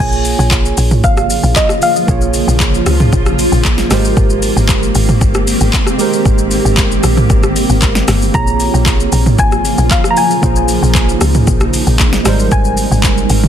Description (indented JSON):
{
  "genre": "amapiano",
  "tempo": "115 BPM",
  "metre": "4/4",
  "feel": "straight",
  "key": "Bb dorian",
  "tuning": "A4 = 439 Hz",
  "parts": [
    { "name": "soft round pluck", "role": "melody", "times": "0.0-2.3, 8.3-13.5 s", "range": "Eb5 to Bb5", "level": "-17 LUFS", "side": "left 1 dB", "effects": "chorus, ping-pong delay" },
    { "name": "tine electric piano", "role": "accompaniment", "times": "0.0-13.5 s", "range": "G3 to Db5", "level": "-18 LUFS", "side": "right 6 dB", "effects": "analog chorus" },
    { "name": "granular cloud pad", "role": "sustained chords", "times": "1.2-13.5 s", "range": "Db3 to Bb4", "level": "-18 LUFS", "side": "left 1 dB", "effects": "built-in reverb" },
    { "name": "woody log drum bass", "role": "bass", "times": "0.0-13.5 s", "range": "G1 to Db2", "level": "-14 LUFS", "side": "equal", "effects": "none" },
    { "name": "deep house drum kit", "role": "drums", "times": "0.1-13.5 s", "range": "handclaps, hi-hat, kick drum, rim click, shaker, snare drum, toms", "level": "-14 LUFS", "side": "equal", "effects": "overdrive" }
  ],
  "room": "little or no reverb",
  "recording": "dense, heavily limited modern master",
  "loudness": "-9 LUFS",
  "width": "side -9 dB against mid",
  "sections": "0.0-13.5 A section",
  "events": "drop 0.0-13.5",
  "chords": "0.0 Bbm7; 3.9 Abmaj9; 8.3 Bbm7; 12.3 Abmaj9"
}